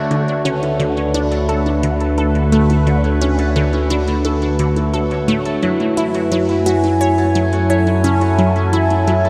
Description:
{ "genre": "ambient, sequencer-driven space music", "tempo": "87 BPM", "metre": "4/4", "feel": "straight", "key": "unclear", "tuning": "A4 = 439 Hz", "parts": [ { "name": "sweeping resonant pad", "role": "sustained chords", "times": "0.0-9.3 s", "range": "D3 to G#5", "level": "-20 LUFS", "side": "equal", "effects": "chorus, phaser" }, { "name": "concert harp", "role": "arpeggios", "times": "0.0-9.3 s", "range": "E4 to C#5", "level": "-25 LUFS", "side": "equal", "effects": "tape echo" }, { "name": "resonant blip pluck", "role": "riff", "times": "0.0-9.2 s", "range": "D3 to C#5", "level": "-23 LUFS", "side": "equal", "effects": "phaser, tape echo" }, { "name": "round analog bass", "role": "bass", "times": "0.0-9.3 s", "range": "D2 to F#2", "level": "-22 LUFS", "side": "equal", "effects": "none" }, { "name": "pulsing gated texture", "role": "texture", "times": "0.4-9.3 s", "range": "A3 to C#5", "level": "-32 LUFS", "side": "equal", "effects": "none" }, { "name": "electronic hi-hat and congas", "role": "percussion", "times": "0.1-9.3 s", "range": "none", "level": "-34 LUFS", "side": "equal", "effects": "tape echo" } ], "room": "wet lush hall reverb, RT60 2.6 s", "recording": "dreamy mix soaked in reverb", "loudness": "-16 LUFS", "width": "mono", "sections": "0.0-9.3 A section", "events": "none", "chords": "0.0 Dmaj7; 5.6 F#m7", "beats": "| 0.11 0.80 1.49 2.18 | 2.87 3.56 4.25 4.94 | 5.63 6.32 7.01 7.70 | 8.39 9.08" }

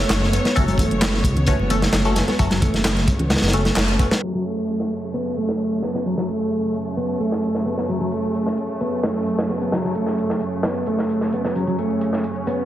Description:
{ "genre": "breakbeat, breaks", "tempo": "131 BPM", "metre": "4/4", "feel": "straight", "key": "F# minor pentatonic", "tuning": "A4 = 440 Hz", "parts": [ { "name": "warm studio string section", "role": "sustained chords", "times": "0.0-12.7 s", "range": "F#2 to C#5", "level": "-27 LUFS", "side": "right 1 dB", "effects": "sidechain pumping" }, { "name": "mellow electric guitar", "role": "riff", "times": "0.0-12.7 s", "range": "F#3 to B3", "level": "-23 LUFS", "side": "equal", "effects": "low-pass filter, digital delay" }, { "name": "dark detuned saw bass", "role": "bass", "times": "0.0-4.0 s", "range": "F#1 to C#2", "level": "-22 LUFS", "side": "equal", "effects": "none" }, { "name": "crunchy breakbeat drum kit", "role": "drums", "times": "0.1-12.6 s", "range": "hi-hat, kick drum, snare drum", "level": "-23 LUFS", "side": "equal", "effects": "high-pass filter on kick, high-pass filter on hats, high-pass filter on snare, high-pass filter on room" }, { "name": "garage drum kit", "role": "drums", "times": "0.1-12.6 s", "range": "handclaps, hi-hat", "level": "-28 LUFS", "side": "equal", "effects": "overdrive" }, { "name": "band-passed chord stab", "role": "stabs", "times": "0.6-3.6 s", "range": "A3 to C#5", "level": "-28 LUFS", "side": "left 2 dB", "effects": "phaser, wide subtle chorus, digital delay" }, { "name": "congas", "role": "percussion", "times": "0.7-3.6 s", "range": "none", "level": "-29 LUFS", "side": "left 1 dB", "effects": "none" }, { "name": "downlifter", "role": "sound effects", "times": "4.5-7.9 s", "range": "none", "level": "-48 LUFS", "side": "equal", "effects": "none" } ], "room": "moderate digital room reverb, RT60 1.1 s, studio ambience", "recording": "heavily compressed radio sound, low-pass filter", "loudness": "-18 LUFS", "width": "side -12 dB against mid", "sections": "0.0-4.2 A section; 4.2-12.7 B section", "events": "band accent 3.8", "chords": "0.0 F#m", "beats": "0.10 | 0.56 1.02 1.48 1.94 | 2.39 2.85 3.31 3.77 | 4.23 4.68 5.14 5.60 | 6.06 6.52 6.97 7.43 | 7.89 8.35 8.81 9.26 | 9.72 10.18 10.64 11.10 | 11.55 12.01 12.47" }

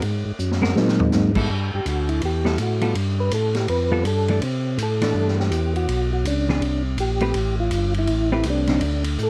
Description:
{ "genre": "soul jazz organ trio", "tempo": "164 BPM", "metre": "4/4", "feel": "swing 63% on 8ths", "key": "G major", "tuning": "A4 = 437 Hz", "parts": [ { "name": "hollow-body jazz guitar", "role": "accompaniment", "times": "0.0-8.8 s", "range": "D3 to B4", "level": "-26 LUFS", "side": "equal", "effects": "none" }, { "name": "tonewheel organ", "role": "bass", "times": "0.0-9.3 s", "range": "G1 to C3", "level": "-25 LUFS", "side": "equal", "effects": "overdrive, chorus vibrato, slow rotary speaker" }, { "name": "vintage drum kit", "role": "drums", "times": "0.0-9.3 s", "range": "crash cymbal, hi-hat, kick drum, ride cymbal, snare drum, toms", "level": "-31 LUFS", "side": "equal", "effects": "none" }, { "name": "percussive tonewheel organ", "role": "melody", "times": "0.8-9.3 s", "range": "Gb3 to B4", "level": "-26 LUFS", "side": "equal", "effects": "slow rotary speaker, chorus vibrato" } ], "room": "little or no reverb", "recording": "dark, warm production", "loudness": "-22 LUFS", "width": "mono", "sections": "0.0-1.5 A section; 1.5-9.3 A section", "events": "drum fill 0.4-1.1; tonewheel organ solo 1.5-9.3", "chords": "0.0 Ab9; 1.5 G69; 3.0 G9; 4.4 C69; 5.9 Bm; 6.6 Gmadd11; 7.4 Am9", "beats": "| 0.03 0.39 0.76 1.13 | 1.49 1.86 2.23 2.59 | 2.96 3.33 3.69 4.06 | 4.42 4.79 5.16 5.53 | 5.89 6.26 6.62 6.99 | 7.36 7.72 8.09 8.46 | 8.82 9.19" }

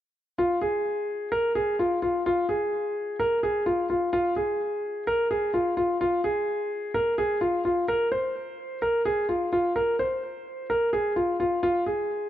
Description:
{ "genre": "hip hop", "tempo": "128 BPM", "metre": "4/4", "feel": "half-time", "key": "F minor", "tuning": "A4 = 440 Hz", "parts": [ { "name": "dark concert grand piano", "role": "solo", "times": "0.4-12.3 s", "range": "F4 to C5", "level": "-24 LUFS", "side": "equal", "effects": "low-pass filter, ping-pong delay" } ], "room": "moderate concert hall reverb, RT60 2.2 s", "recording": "none", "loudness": "-24 LUFS", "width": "side -12 dB against mid", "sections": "0.4-4.1 A section; 4.1-12.3 B section", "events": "none", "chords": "none", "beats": "| 0.38 0.85 1.32 1.79 | 2.26 2.73 3.19 3.66 | 4.13 4.60 5.07 5.54 | 6.01 6.48 6.95 7.41 | 7.88 8.35 8.82 9.29 | 9.76 10.23 10.70 11.16 | 11.63 12.10" }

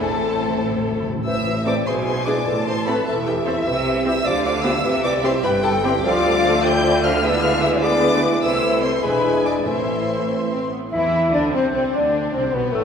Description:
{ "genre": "quick classical-period movement for symphony orchestra", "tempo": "100 BPM (dotted quarters)", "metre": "6/8", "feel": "rubato", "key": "A minor", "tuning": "A4 = 443 Hz", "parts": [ { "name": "dark chamber violin section", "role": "melody", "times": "0.0-12.8 s", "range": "A3 to G6", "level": "-26 LUFS", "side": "left 2 dB", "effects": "none" }, { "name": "rich chamber violin section", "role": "second line", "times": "0.0-12.8 s", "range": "A3 to A5", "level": "-26 LUFS", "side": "left 2 dB", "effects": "none" }, { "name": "rich chamber viola section", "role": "accompaniment", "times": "0.0-12.8 s", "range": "F3 to A4", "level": "-26 LUFS", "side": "left 1 dB", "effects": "none" }, { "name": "dark French horn section", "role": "sustained chords", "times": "0.0-10.7 s", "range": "G3 to A4", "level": "-27 LUFS", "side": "left 1 dB", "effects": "none" }, { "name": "rich chamber cello section", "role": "bass", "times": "0.0-12.8 s", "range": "E2 to E3", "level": "-26 LUFS", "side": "right 2 dB", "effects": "none" }, { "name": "warm chamber double bass section", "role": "bass", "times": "0.0-12.8 s", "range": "E1 to E2", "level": "-29 LUFS", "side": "right 3 dB", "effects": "none" }, { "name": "timpani", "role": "percussion", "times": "0.0-1.2 s", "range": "A2", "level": "-30 LUFS", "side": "left 1 dB", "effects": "none" }, { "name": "dark clarinet", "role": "second line", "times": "1.3-12.8 s", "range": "G4 to E5", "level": "-26 LUFS", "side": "left 1 dB", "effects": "none" }, { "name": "hollow concert flute", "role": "second line", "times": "1.3-10.7 s", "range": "E4 to G5", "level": "-25 LUFS", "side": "left 2 dB", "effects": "none" }, { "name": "mellow bassoon", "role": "accompaniment", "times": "1.3-10.7 s", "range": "E3 to F3", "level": "-26 LUFS", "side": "right 2 dB", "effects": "none" } ], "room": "wet scoring stage reverb, RT60 2.0 s", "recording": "recorded in a church or concert hall", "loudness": "-17 LUFS", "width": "side -7 dB against mid", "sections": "0.0-1.3 A section; 1.3-10.9 B section; 10.9-12.8 B section", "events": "timpani fill 0.0-1.3", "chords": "0.0 Am; 1.9 E7/B; 2.5 Am; 3.7 C; 4.3 G7/D; 4.8 C; 6.1 Dm; 7.2 E7/D; 8.4 Am/C; 9.0 E7; 9.7 Am; 10.9 Dsus2; 11.5 Csus2; 12.1 Am", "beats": "| 0.01 0.65 | 1.27 1.87 | 2.47 3.07 | 3.67 4.26 | 4.85 5.44 | 6.05 6.64 | 7.23 7.83 | 8.43 9.04 | 9.66 10.30 | 10.92 11.53 | 12.14 12.74" }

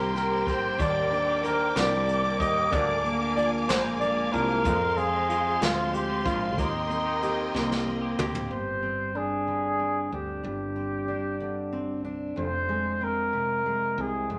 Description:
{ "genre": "six-eight pop ballad", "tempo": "62 BPM (dotted quarters)", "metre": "6/8", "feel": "straight", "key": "unclear", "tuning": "A4 = 440 Hz", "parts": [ { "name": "warm flugelhorn", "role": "melody", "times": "0.0-14.4 s", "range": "Eb4 to Eb5", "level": "-30 LUFS", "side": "equal", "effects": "none" }, { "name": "fingerpicked steel-string acoustic guitar", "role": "accompaniment", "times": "0.0-14.4 s", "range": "F2 to Bb4", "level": "-34 LUFS", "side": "equal", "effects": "none" }, { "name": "warm studio string section", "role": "sustained chords", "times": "0.0-8.5 s", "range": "Ab3 to D6", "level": "-34 LUFS", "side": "equal", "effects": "none" }, { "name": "electric guitar at the edge of break-up", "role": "arpeggios", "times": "0.0-8.5 s", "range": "F2 to Ab4", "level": "-39 LUFS", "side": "equal", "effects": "none" }, { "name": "woody fretless electric bass", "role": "bass", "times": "0.0-14.4 s", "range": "F1 to F2", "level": "-37 LUFS", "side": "equal", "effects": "none" }, { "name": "jazz brush drum kit", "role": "drums", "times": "0.2-8.5 s", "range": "hi-hat, kick drum, snare drum, toms", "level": "-35 LUFS", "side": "equal", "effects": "none" } ], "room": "wet studio reverb, RT60 0.8 s", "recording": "none", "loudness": "-27 LUFS", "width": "mono", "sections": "0.0-8.5 A section; 8.5-14.4 B section", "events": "drum fill 7.5-8.5", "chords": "0.0 Cm7; 0.8 Ebmaj7; 2.7 Bb7; 6.6 Cm7/Eb; 8.5 Gsus4; 12.4 Fm", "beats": "| 0.80 1.76 | 2.73 3.69 | 4.65 5.62 | 6.58 7.54 | 8.51 9.47 | 10.44 11.40 | 12.37 13.34 | 14.30" }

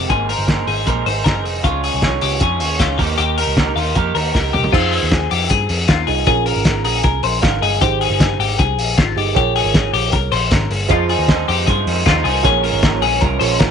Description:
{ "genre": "jangly indie pop", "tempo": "155 BPM", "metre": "4/4", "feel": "straight", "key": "Ab major", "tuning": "A4 = 440 Hz", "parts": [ { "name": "electric guitar through a small old amp", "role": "accompaniment", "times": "0.0-4.7, 10.9-13.7 s", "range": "Bb2 to Db5", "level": "-22 LUFS", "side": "right 15 dB", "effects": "none" }, { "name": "twelve-string electric guitar", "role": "arpeggios", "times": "0.0-13.7 s", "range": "F4 to C5", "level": "-20 LUFS", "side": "left 16 dB", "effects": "none" }, { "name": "vintage muted picked electric bass", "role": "bass", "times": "0.0-13.7 s", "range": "F1 to G2", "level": "-21 LUFS", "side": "equal", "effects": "none" }, { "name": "cloth-damped thuddy drum kit", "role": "drums", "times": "0.1-13.7 s", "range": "crash cymbal, hi-hat, kick drum, snare drum, toms", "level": "-18 LUFS", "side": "equal", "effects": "none" }, { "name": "reed electric piano", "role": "accompaniment", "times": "4.7-13.7 s", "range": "Db4 to Bb5", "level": "-23 LUFS", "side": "right 15 dB", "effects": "none" } ], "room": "small room ambience", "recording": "1960s-style stereo with parts hard left and right, nothing above 11.0 kHz", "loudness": "-14 LUFS", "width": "side -7 dB against mid", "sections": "0.0-4.7 A section; 4.7-13.7 B section", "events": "drum fill 4.3-4.7; reed electric piano fill 6.7-7.8", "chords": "0.1 Abadd9; 1.6 Db; 3.0 Eb; 4.7 Fm7; 6.3 Bbm7; 7.8 Abmaj7; 9.4 Bbm7; 10.9 Fm7; 12.4 Bbm7", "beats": "| 0.09 0.48 0.86 1.25 | 1.64 2.02 2.41 2.79 | 3.18 3.57 3.95 4.34 | 4.73 5.11 5.50 5.88 | 6.27 6.66 7.04 7.43 | 7.81 8.20 8.59 8.97 | 9.36 9.74 10.13 10.52 | 10.90 11.29 11.67 12.06 | 12.45 12.83 13.22 13.60" }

